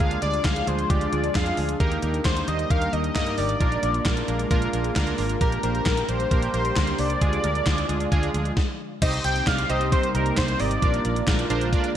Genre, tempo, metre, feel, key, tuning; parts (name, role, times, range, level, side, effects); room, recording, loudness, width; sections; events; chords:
synth-pop; 133 BPM; 4/4; straight; C minor; A4 = 440 Hz
octave-doubled lead; melody; 0.0-11.5 s; Bb4 to G5; -27 LUFS; left 1 dB; chorus, phaser, digital delay
warm analog keys; accompaniment; 0.0-11.9 s; Ab3 to Eb5; -28 LUFS; right 2 dB; chorus
lush unison pad; sustained chords; 0.0-12.0 s; C3 to G4; -31 LUFS; equal; chorus
vintage muted fingered electric bass; bass; 0.0-11.7 s; Ab1 to G2; -28 LUFS; equal
gated 80s digital drum machine; drums; 0.0-11.9 s; crash cymbal, handclaps, hi-hat, kick drum, snare drum; -25 LUFS; equal; gated reverb, gated reverb snare
light reverb, digital ambience; -21 LUFS; side -10 dB against mid
0.0-9.0 A section; 9.0-12.0 B section
stop 8.6-9.0
0.0 Ddim; 1.8 Ebmaj7; 3.6 Bb7; 5.4 Gm/Bb; 7.2 Ddim; 9.0 Cm7; 10.8 Bb7